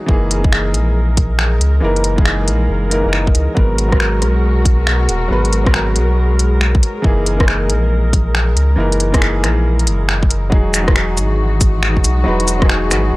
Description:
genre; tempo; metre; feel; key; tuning
future garage; 138 BPM; 4/4; swing 65% on 16ths; unclear; A4 = 441 Hz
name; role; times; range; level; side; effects
felt-muted upright piano; accompaniment; 0.0-13.2 s; E3 to B4; -20 LUFS; equal; sidechain pumping, analog delay
muted studio string section; sustained chords; 0.0-13.2 s; B2 to A#4; -23 LUFS; left 1 dB; sidechain pumping
warm sub bass; bass; 0.1-13.2 s; D#1 to C#2; -16 LUFS; equal; tube saturation
electronic kick drum; drums; 0.1-12.7 s; none; -14 LUFS; equal; none
organic electronic drum kit; drums; 0.3-13.0 s; cabasa, finger snaps, hi-hat, rim click; -18 LUFS; equal; none
room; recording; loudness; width
little or no reverb; dry, gritty hardware recording, cassette tape; -12 LUFS; side -20 dB against mid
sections
0.0-10.5 A section; 10.5-13.2 B section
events
none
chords
0.1 F#13; 3.6 G#m9; 7.0 F#13; 10.5 Emaj9

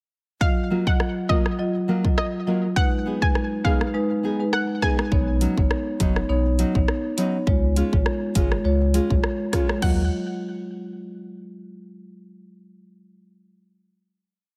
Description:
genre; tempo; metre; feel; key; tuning
dancehall; 102 BPM; 4/4; swing 56% on 16ths; Eb minor; A4 = 440 Hz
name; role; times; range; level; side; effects
analog pluck; melody; 0.4-4.9, 9.8-10.1 s; Eb5 to Ab5; -31 LUFS; equal; chorus, tape echo
marimba with medium mallets; accompaniment; 0.4-10.1 s; Gb3 to Eb5; -28 LUFS; equal; sidechain pumping
pop drum kit; drums; 0.4-10.0 s; crash cymbal, hi-hat, kick drum, rim click; -25 LUFS; equal; none
nylon-string guitar; arpeggios; 0.7-10.0 s; Gb3 to Ab4; -29 LUFS; equal; none
warm sub bass; bass; 5.1-10.1 s; F#1 to Eb2; -26 LUFS; equal; none
room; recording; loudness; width
digital ambience; none; -22 LUFS; mono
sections
0.4-9.8 verse; 9.8-12.2 final chord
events
none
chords
0.4 Ebmadd9; 2.8 Abm; 5.1 Badd9; 7.5 Db; 9.8 Ebmadd9

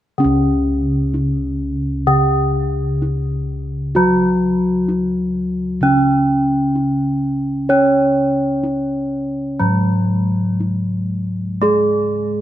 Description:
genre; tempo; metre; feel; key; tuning
Javanese gamelan; 63 BPM; 4/4; uneven beats; unclear; A4 = 440 Hz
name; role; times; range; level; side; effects
gamelan-type bronze metallophone; accompaniment; 0.2-12.4 s; C#3 to C#4; -18 LUFS; equal; none
gamelan-type bossed gongs; bass; 0.2-12.4 s; C#2 to C#5; -19 LUFS; equal; none
room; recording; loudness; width
moderate concert hall reverb, RT60 2.2 s; none; -15 LUFS; side -12 dB against mid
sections
0.2-12.4 A section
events
none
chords
none

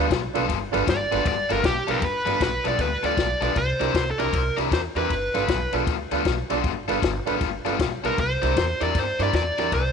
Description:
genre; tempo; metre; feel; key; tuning
electric blues shuffle; 156 BPM; 4/4; swing 64% on 8ths; G mixolydian; A4 = 437 Hz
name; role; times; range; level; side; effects
warm upright piano; accompaniment; 0.0-9.7 s; D4 to D5; -29 LUFS; right 14 dB; none
overdriven semi-hollow guitar; riff; 0.0-9.8 s; G3 to D5; -27 LUFS; left 14 dB; none
upright bass; bass; 0.0-9.9 s; G1 to G2; -29 LUFS; equal; none
compact cocktail drum kit; drums; 0.1-9.8 s; kick drum, ride cymbal, snare drum; -28 LUFS; left 3 dB; none
dark smooth lead guitar; melody; 0.9-5.7, 8.1-9.9 s; G4 to D5; -25 LUFS; right 1 dB; overdrive
room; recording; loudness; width
light reverb, small room ambience; 1960s-style stereo with parts hard left and right, nothing above 10.8 kHz; -21 LUFS; side -6 dB against mid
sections
0.0-2.0 A section; 2.0-9.9 B section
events
lead electric guitar solo 0.0-2.0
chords
0.0 G9; 3.6 C9; 5.1 G9; 8.2 C9

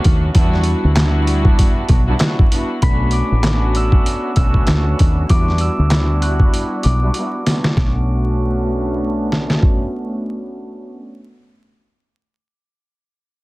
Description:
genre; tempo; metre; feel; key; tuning
hip hop, boom-bap hip-hop; 97 BPM; 4/4; swing 57% on 16ths; B minor; A4 = 440 Hz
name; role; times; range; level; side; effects
dark studio string section; accompaniment; 0.0-11.0 s; G3 to F#4; -21 LUFS; equal; cassette tape, high-pass filter, low-pass filter
trip hop sampler-style drum kit; drums; 0.0-9.8 s; handclaps, hi-hat, kick drum, snare drum; -15 LUFS; equal; none
deep dub fingered electric bass; bass; 0.1-11.2 s; A1 to E2; -17 LUFS; equal; none
glockenspiel with rubber mallets; melody; 2.8-9.6 s; B5 to F#7; -26 LUFS; left 1 dB; high-pass filter, low-pass filter, digital delay
room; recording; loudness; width
little or no reverb; dense, heavily limited modern master, vinyl crackle; -14 LUFS; side -20 dB against mid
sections
0.0-2.8 A section; 2.8-7.8 B section; 7.8-10.2 C section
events
filter sweep 2.8-7.8; drum fill 6.5-7.8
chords
0.3 Em9; 2.8 Bm9; 5.3 Em9; 7.8 Bm9

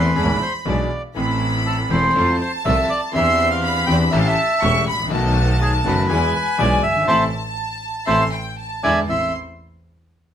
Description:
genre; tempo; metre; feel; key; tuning
tango; 121 BPM; 4/4; rubato; A minor; A4 = 441 Hz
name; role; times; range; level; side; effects
bandoneon; melody; 0.0-9.3 s; G#4 to A5; -20 LUFS; right 1 dB; none
warm studio violin section; second line; 0.0-9.3 s; G5 to C#6; -24 LUFS; left 1 dB; none
bright concert grand piano; accompaniment; 0.0-9.3 s; E1 to A4; -22 LUFS; left 2 dB; none
clear symphonic string section; stabs; 0.0-9.3 s; E3 to G4; -30 LUFS; equal; none
clear double bass; bass; 0.0-9.3 s; E1 to F2; -22 LUFS; right 1 dB; none
room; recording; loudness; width
moderate studio reverb, RT60 0.6 s; band playing live in one room; -16 LUFS; side -9 dB against mid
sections
0.0-9.1 A section; 9.1-10.3 B section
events
band accent 7.1-9.1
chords
0.2 E7; 1.2 Am; 2.2 Fmaj7; 3.1 Cadd9/E; 4.1 A7; 5.1 B7; 6.1 E; 7.1 Am; 8.6 E7; 9.1 Am

